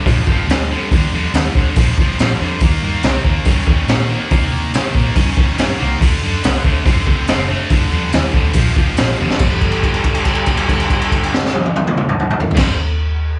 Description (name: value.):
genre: blues rock power trio and southern rock.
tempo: 141 BPM.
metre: 4/4.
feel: straight.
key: G minor.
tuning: A4 = 440 Hz.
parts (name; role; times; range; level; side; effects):
distorted electric guitar; riff; 0.0-12.8 s; G2 to C#4; -22 LUFS; equal; distortion.
vintage muted fingered electric bass; bass; 0.1-12.8 s; F1 to C3; -22 LUFS; equal; none.
raw garage drum kit; drums; 0.1-12.7 s; crash cymbal, hi-hat, kick drum, snare drum, toms; -18 LUFS; equal; none.
room: little or no reverb.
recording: live gig heard through the venue's PA, club reverb, nothing above 10.9 kHz.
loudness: -16 LUFS.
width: mono.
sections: 0.0-9.4 A section; 9.4-12.8 B section.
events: drum fill 9.2; held note 9.4-12.6.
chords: 0.0 Gm7; 2.6 Eb; 6.0 D7; 7.7 Gm7; 9.4 G5.